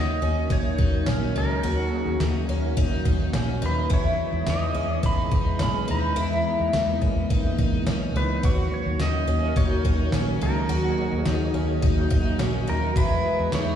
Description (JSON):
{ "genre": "dream pop", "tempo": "106 BPM", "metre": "4/4", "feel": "straight", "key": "unclear", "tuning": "A4 = 444 Hz", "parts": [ { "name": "pedal steel guitar", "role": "melody", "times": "0.0-13.8 s", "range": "A#4 to B5", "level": "-30 LUFS", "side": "right 2 dB", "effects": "tape echo" }, { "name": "soft string machine", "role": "sustained chords", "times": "0.0-13.8 s", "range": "D#3 to D#5", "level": "-28 LUFS", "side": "right 1 dB", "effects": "ensemble chorus" }, { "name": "picked twelve-string acoustic guitar", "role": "arpeggios", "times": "0.0-13.8 s", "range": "C#4 to F#4", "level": "-29 LUFS", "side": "left 3 dB", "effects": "analog chorus, tape echo" }, { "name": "vintage muted fingered electric bass", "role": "bass", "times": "0.0-13.8 s", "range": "A#1 to E2", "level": "-26 LUFS", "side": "equal", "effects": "none" }, { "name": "detuned 8-bit digital drum machine", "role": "drums", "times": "0.5-13.7 s", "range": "kick drum, ride cymbal, snare drum, tambourine", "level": "-26 LUFS", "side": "equal", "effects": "none" } ], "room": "wet scoring stage reverb, RT60 2.0 s", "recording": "played on a big sound system in a bare room, large studio reverb, studio reverb", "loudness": "-21 LUFS", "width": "side -9 dB against mid", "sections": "0.0-13.8 A section", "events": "none", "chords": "0.0 D#m7; 3.9 Emaj7; 8.4 D#m7; 13.0 Emaj7", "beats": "0.51 1.07 | 1.64 2.21 2.77 3.34 | 3.90 4.47 5.04 5.60 | 6.17 6.73 7.30 7.87 | 8.43 9.00 9.56 10.13 | 10.70 11.26 11.83 12.39 | 12.96 13.53" }